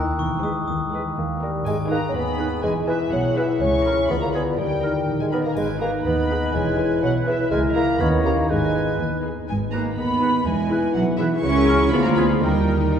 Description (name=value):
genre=cinematic, playful, whimsical film cue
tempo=123 BPM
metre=2/4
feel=straight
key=G# minor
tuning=A4 = 440 Hz
part: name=glockenspiel with hard plastic mallets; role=melody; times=0.0-1.1 s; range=A#5 to D#6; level=-30 LUFS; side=left 2 dB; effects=none
part: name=warm studio violin section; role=melody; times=0.0-13.0 s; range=A#4 to C#6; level=-34 LUFS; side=left 4 dB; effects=none
part: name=clear clarinet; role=second line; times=0.0-12.8 s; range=D#4 to B4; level=-30 LUFS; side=left 2 dB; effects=none
part: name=rich studio violin section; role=second line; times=0.0-12.9 s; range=D#4 to C#6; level=-34 LUFS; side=left 2 dB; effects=none
part: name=dark studio viola section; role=accompaniment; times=0.0-13.0 s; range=G#3 to A#4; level=-30 LUFS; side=equal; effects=none
part: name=mellow bassoon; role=accompaniment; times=0.0-13.0 s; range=D#3 to C#4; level=-25 LUFS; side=right 1 dB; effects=none
part: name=concert harp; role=arpeggios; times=0.0-13.0 s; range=G#2 to E5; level=-29 LUFS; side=left 3 dB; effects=none
part: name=dark studio double bass section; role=bass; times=0.0-13.0 s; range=E1 to E2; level=-28 LUFS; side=right 1 dB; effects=none
part: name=warm studio cello section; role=bass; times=0.0-12.9 s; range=C#2 to C#4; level=-26 LUFS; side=right 3 dB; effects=none
part: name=mellow French horn section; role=sustained chords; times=1.7-13.0 s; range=C#4 to B4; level=-28 LUFS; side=left 2 dB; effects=none
part: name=triangle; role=percussion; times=1.7-2.6, 5.6-6.5 s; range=none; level=-52 LUFS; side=right 3 dB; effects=none
part: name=warm oboe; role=second line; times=1.9-12.8 s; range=Ab4 to C#5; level=-33 LUFS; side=right 2 dB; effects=none
part: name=mellow hollow small flute group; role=second line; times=2.2-12.9 s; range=A#4 to C#6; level=-31 LUFS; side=equal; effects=none
part: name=mellow tuba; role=bass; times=9.5-13.0 s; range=E1 to D#2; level=-28 LUFS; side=right 2 dB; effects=none
room=wet scoring stage reverb, RT60 2.0 s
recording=heard from further back in the room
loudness=-19 LUFS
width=side -8 dB against mid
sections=0.0-1.7 A section; 1.7-9.5 B section; 9.5-13.0 B section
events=none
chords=0.2 E; 0.7 G#m/D#; 1.2 D#; 1.7 G#m; 2.6 E; 3.6 A#m7b5/C#; 4.1 Ddim7; 4.6 D#; 5.6 G#m; 6.5 E; 7.5 A#m7b5/C#; 8.0 D#7; 8.5 G#m; 10.5 E; 11.4 A#m7b5/C#; 11.9 Ddim7; 12.4 D#